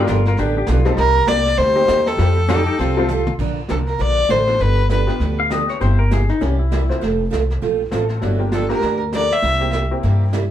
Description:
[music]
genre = country, western swing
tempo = 199 BPM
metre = 4/4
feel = swing 60% on 8ths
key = Bb major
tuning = A4 = 442 Hz
[part]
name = pedal steel guitar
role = second line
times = 0.0-3.3, 5.4-7.0 s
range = C4 to F5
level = -22 LUFS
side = left 4 dB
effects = none
[part]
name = honky-tonk upright piano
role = accompaniment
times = 0.0-10.3 s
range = G3 to C5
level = -25 LUFS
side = left 3 dB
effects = none
[part]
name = upright bass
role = bass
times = 0.0-10.5 s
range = F1 to G2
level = -19 LUFS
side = equal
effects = none
[part]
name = picked steel-string acoustic guitar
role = accompaniment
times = 0.1-10.4 s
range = C3 to Bb4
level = -25 LUFS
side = right 8 dB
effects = none
[part]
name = vintage brush drum kit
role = drums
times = 0.1-10.5 s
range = brushed snare drum, crash cymbal, hi-hat, kick drum, snare drum, toms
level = -28 LUFS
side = right 1 dB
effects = none
[part]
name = warm fiddle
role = melody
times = 1.0-5.4, 8.5-9.7 s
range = A4 to E5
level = -18 LUFS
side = left 1 dB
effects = none
[part]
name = hollow-body jazz guitar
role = second line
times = 1.0-3.3, 8.5-9.7 s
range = F3 to C5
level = -28 LUFS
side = right 2 dB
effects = none
[sound]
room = moderate studio reverb, RT60 0.5 s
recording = band playing live in one room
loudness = -15 LUFS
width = side -11 dB against mid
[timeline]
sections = 0.0-3.4 A section; 3.4-10.5 B section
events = drum fill 3.1-3.4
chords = 0.0 G7; 1.0 Cm7; 2.2 Fadd9; 3.4 Bb; 4.6 G7; 5.8 C7/G; 7.0 F; 8.2 Gm7; 9.4 C7

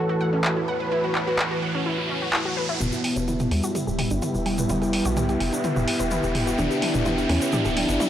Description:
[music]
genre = melodic techno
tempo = 127 BPM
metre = 4/4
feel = straight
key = E dorian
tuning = A4 = 441 Hz
[part]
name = wide unison lead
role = melody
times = 0.0-8.1 s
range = G3 to B4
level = -28 LUFS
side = equal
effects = analog delay
[part]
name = dark analog pad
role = sustained chords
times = 0.0-8.1 s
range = E3 to E5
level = -28 LUFS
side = equal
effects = chorus, vintage 12-bit sampler grit
[part]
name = riser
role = sound effects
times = 0.0-8.1 s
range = none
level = -31 LUFS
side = right 1 dB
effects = none
[part]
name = ethereal airy pad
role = texture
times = 0.0-8.1 s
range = E3 to A5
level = -31 LUFS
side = equal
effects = ensemble chorus, built-in reverb
[part]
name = wide unison pluck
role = arpeggios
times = 0.1-8.1 s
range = C#4 to G5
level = -31 LUFS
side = moving between left 5 dB and right 4 dB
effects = auto-pan, tape echo
[part]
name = punchy analog drum machine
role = drums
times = 0.4-8.1 s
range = handclaps, hi-hat, toms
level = -27 LUFS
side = equal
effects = none
[part]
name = tight sequencer bass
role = bass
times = 2.8-8.0 s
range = D1 to E2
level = -28 LUFS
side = equal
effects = none
[part]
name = tube shaker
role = percussion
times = 2.8-8.1 s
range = none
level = -36 LUFS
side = left 2 dB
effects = none
[sound]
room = light reverb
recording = dry, gritty hardware recording, transformer saturation, cassette tape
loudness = -21 LUFS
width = side -10 dB against mid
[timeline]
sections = 0.0-2.8 A section; 2.8-8.1 B section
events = riser 0.0-2.8, 2.8-8.1; build-up 2.8-8.1; drum fill 2.8-8.1; filter sweep on analog synth lead 2.8-8.1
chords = 0.0 F#m7/E; 2.8 Em

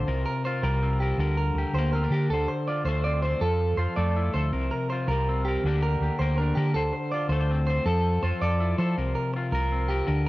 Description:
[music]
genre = highlife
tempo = 108 BPM (dotted quarters)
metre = 12/8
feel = straight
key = unclear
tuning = A4 = 441 Hz
[part]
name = electric guitar at the edge of break-up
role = accompaniment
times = 0.0-10.3 s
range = C3 to C5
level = -29 LUFS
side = left 2 dB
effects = lush chorus, cassette tape
[part]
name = clean electric guitar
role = arpeggios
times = 0.0-10.3 s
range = G4 to D5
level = -29 LUFS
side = right 2 dB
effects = cassette tape, analog delay
[part]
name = hollow-body short-scale fingered electric bass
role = bass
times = 0.0-10.3 s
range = C2 to F3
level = -25 LUFS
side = equal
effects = none
[sound]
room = light reverb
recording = home recording on cassette, nothing above 7.5 kHz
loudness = -23 LUFS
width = side -18 dB against mid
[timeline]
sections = 0.0-10.3 A section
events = none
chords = 0.1 C7sus4; 1.2 Bb6/D; 2.3 Dm7; 3.4 Fmaj7; 4.5 C7sus4; 5.6 Bb6/D; 6.7 Dm7; 7.9 Fmaj7; 9.0 C7sus4

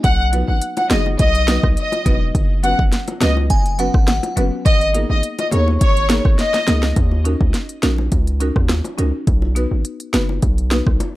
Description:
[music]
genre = dancehall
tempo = 104 BPM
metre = 4/4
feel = straight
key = unclear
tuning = A4 = 440 Hz
[part]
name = warm studio violin section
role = melody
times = 0.0-6.8 s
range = C#5 to F#5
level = -20 LUFS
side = left 1 dB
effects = tape echo
[part]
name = hard-hitting 808-style bass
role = bass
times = 0.0-11.0 s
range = E1 to D#2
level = -18 LUFS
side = equal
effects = none
[part]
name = afro-pop drum kit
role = drums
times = 0.0-11.1 s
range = hi-hat, kick drum, rim click, snare drum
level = -17 LUFS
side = equal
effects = none
[part]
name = buzzing marimba with medium mallets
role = accompaniment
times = 0.3-10.8 s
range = F#3 to B4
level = -25 LUFS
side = left 1 dB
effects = none
[part]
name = bongos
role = percussion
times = 0.3-11.1 s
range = none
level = -29 LUFS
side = left 2 dB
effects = none
[part]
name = glassy synth bell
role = second line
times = 3.5-4.5 s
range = F#5 to G#5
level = -25 LUFS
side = equal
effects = chorus, tape echo
[sound]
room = small room ambience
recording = dry, gritty hardware recording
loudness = -15 LUFS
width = side -17 dB against mid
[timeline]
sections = 0.0-7.0 A section; 7.0-11.2 B section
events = drum fill 6.4-7.0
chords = 0.0 B; 2.3 F#sus4; 4.7 G#madd9; 7.0 D#m7; 9.3 B

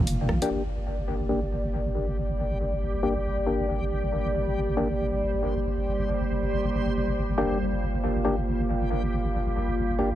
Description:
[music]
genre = deep dubstep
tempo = 138 BPM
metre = 4/4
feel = swing 61% on 16ths, half-time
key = G minor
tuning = A4 = 440 Hz
[part]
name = dark analog pad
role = sustained chords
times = 0.0-10.2 s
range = Bb3 to F5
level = -30 LUFS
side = right 2 dB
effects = chorus
[part]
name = deep soft wobble bass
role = bass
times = 0.0-10.2 s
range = F1 to Bb1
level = -28 LUFS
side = equal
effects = chorus
[part]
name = deep house drum kit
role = drums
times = 0.1-0.5 s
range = hi-hat, rim click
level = -39 LUFS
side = left 1 dB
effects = overdrive, studio reverb
[part]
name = percussive organ stab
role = stabs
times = 0.4-10.1 s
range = Bb3 to G4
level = -31 LUFS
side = left 2 dB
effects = chorus, dub echo
[part]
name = backwards swelling texture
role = texture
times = 1.9-10.2 s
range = G3 to C5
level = -35 LUFS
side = equal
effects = built-in reverb
[sound]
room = light reverb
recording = none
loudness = -25 LUFS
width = side -12 dB against mid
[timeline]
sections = 0.5-10.2 A section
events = filter sweep on synth stab 0.5-10.2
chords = 0.0 Gm

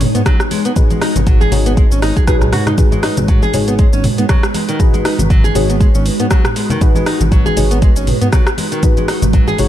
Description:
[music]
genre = afro house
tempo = 119 BPM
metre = 4/4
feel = swing 56% on 16ths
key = G# minor pentatonic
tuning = A4 = 440 Hz
[part]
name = ethereal airy pad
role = sustained chords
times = 0.0-9.7 s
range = G#3 to C#5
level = -22 LUFS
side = right 2 dB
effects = ensemble chorus, built-in reverb, phaser, sidechain pumping
[part]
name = deep mellow chord stab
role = stabs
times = 0.0-9.7 s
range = D#4 to C#5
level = -22 LUFS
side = left 2 dB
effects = chorus, sidechain pumping, digital delay
[part]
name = smooth synth bass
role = bass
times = 0.0-9.7 s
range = G#1 to G#2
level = -17 LUFS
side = equal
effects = sidechain pumping
[part]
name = afro-pop drum kit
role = drums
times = 0.0-9.7 s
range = cabasa, hi-hat, rim click, toms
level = -20 LUFS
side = right 1 dB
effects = none
[part]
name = congas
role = percussion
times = 0.0-9.7 s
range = none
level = -22 LUFS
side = left 3 dB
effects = none
[part]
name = nylon-string guitar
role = arpeggios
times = 0.1-9.6 s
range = D#3 to G#4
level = -20 LUFS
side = equal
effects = sidechain pumping, digital delay
[part]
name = electronic kick drum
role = drums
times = 0.3-9.4 s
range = none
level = -12 LUFS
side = equal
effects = none
[sound]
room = digital ambience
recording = dark, warm production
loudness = -11 LUFS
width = side -12 dB against mid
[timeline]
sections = 0.0-9.7 A section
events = drum fill 2.4-2.8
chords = 0.0 G#m7

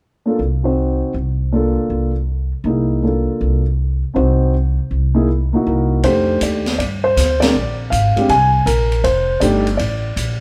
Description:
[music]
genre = jazz piano trio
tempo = 160 BPM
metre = 4/4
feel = swing 66% on 8ths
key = F mixolydian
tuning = A4 = 440 Hz
[part]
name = dark grand piano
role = melody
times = 0.3-10.4 s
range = Ab3 to Ab5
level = -19 LUFS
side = equal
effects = none
[part]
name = upright bass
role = bass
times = 0.4-10.4 s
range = F1 to G2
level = -20 LUFS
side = equal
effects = none
[part]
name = open jazz drum kit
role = drums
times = 6.0-10.3 s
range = hi-hat, kick drum, ride cymbal, snare drum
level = -26 LUFS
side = equal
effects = none
[sound]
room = moderate large studio reverb, RT60 1.2 s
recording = band playing live in one room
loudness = -17 LUFS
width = mono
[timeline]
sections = 0.0-6.0 A section; 6.0-10.4 B section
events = band accent 7.4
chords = 0.0 N.C.; 6.0 F13; 7.5 Bb9; 9.0 F69

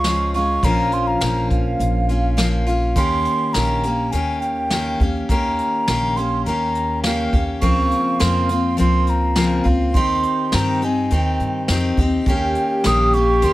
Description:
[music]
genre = acoustic folk duo or small band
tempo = 103 BPM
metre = 4/4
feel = straight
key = unclear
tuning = A4 = 441 Hz
[part]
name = hollow baroque flute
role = melody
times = 0.0-13.5 s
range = F5 to Eb6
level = -22 LUFS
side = right 2 dB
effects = none
[part]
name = picked steel-string acoustic guitar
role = accompaniment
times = 0.0-13.5 s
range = Bb2 to G4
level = -21 LUFS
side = left 2 dB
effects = none
[part]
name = upright bass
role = bass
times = 0.0-13.5 s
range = Bb1 to G2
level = -22 LUFS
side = equal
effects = none
[part]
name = vintage brush drum kit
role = drums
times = 0.0-13.5 s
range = hi-hat, kick drum, snare drum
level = -23 LUFS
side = equal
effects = none
[part]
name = warm French horn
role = second line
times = 12.3-13.5 s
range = G4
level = -20 LUFS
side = left 1 dB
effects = none
[sound]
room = little or no reverb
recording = close, detailed microphones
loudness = -16 LUFS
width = side -16 dB against mid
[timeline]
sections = 0.0-3.0 A section; 3.0-13.5 B section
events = none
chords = 0.0 Db; 0.6 Bbm; 3.0 Eb7; 7.6 Bbmadd9/Db; 10.0 Cm/Eb; 12.3 Eb7

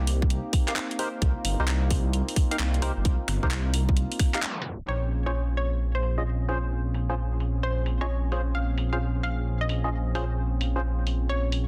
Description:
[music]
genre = UK garage, two-step garage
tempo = 131 BPM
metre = 4/4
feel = swing 66% on 16ths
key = Bb dorian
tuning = A4 = 440 Hz
[part]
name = warm analog pad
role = sustained chords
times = 0.0-11.7 s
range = Bb3 to Ab4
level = -38 LUFS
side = equal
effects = chorus, sidechain pumping
[part]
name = dark detuned saw bass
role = bass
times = 0.0-11.7 s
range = G1 to C2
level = -28 LUFS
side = equal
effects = none
[part]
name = garage drum kit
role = drums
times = 0.1-11.6 s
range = finger snaps, handclaps, hi-hat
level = -34 LUFS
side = equal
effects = low-pass filter on snare, low-pass filter on hats
[part]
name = electronic kick drum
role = drums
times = 0.2-4.3 s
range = none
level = -26 LUFS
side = equal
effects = none
[part]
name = percussive organ stab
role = stabs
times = 0.7-10.8 s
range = Db4 to F5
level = -36 LUFS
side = equal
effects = analog chorus, digital delay
[part]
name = hollow square pluck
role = melody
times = 4.9-11.5 s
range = C5 to F5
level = -36 LUFS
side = equal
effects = chorus, tape echo
[sound]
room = light reverb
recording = dense, heavily limited modern master, tape stop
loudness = -27 LUFS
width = mono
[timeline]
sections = 0.0-4.9 A section; 4.9-11.7 B section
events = band accent 4.4; tape stop 4.4-4.9; filter sweep on drum 4.9-11.7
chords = 0.0 Cm7; 4.9 Bbm9

